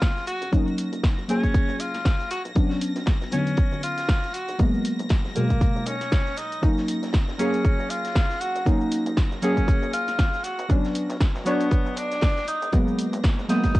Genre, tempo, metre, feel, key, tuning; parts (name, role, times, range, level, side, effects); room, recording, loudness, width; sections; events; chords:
deep house; 118 BPM; 4/4; swing 57% on 16ths; F# major; A4 = 440 Hz
clear tenor saxophone; melody; 0.0-13.8 s; A#3 to F#4; -30 LUFS; equal; cassette tape, tape echo
deep mellow chord stab; stabs; 0.0-13.8 s; B2 to C#5; -26 LUFS; equal; chorus, cassette tape, sidechain pumping, tape echo
rubbery square bass; bass; 0.0-13.8 s; F#1 to D#2; -40 LUFS; equal; sidechain pumping, high-pass filter
deep reggae drum kit; drums; 0.0-13.8 s; hi-hat, snare drum; -42 LUFS; left 1 dB
electronic kick drum; drums; 0.0-13.8 s; -21 LUFS; equal; vintage 12-bit sampler grit, cassette tape
punchy analog drum machine; drums; 0.0-13.8 s; cabasa, hi-hat, snare drum; -33 LUFS; equal; vintage 12-bit sampler grit, cassette tape
bright studio violin section; texture; 0.0-13.8 s; A#6; -42 LUFS; left 1 dB; cassette tape
light reverb, small room ambience; home recording on cassette; -21 LUFS; side -18 dB against mid
0.0-13.8 A section
build-up 0.0-13.8
0.0 F#6; 2.3 Bmadd9; 4.3 G#m9; 6.6 F#6; 10.4 Bmadd9; 12.5 G#m9